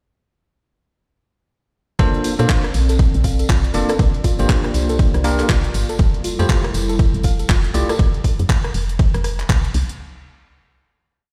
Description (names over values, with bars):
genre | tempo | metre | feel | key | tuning
deep house | 120 BPM | 4/4 | swing 60% on 16ths | F major | A4 = 445 Hz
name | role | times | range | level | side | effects
dark analog pad | sustained chords | 2.0-8.0 s | G3 to D5 | -31 LUFS | equal | chorus, sidechain pumping
bell-like tine electric piano | stabs | 2.0-7.9 s | A3 to D5 | -26 LUFS | equal | tape echo
woody FM bass | bass | 2.0-9.8 s | F1 to Bb2 | -22 LUFS | equal | sidechain pumping
deep house drum kit | drums | 2.0-10.0 s | handclaps, hi-hat, ride cymbal, rim click | -29 LUFS | equal | overdrive
electronic kick drum | drums | 2.0-9.6 s | none | -19 LUFS | equal | overdrive
tambourine | percussion | 2.0-8.0 s | none | -38 LUFS | equal | none
soft round pluck | arpeggios | 2.2-7.9 s | F4 to F5 | -31 LUFS | equal | chorus, sidechain pumping, tape echo
room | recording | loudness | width
little or no reverb | played on a big sound system in a bare room, stone room reverb | -18 LUFS | mono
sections
2.0-10.0 drop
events
drop 2.0-10.0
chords
2.0 Bbmaj9; 4.0 C9sus4; 6.0 Fmaj9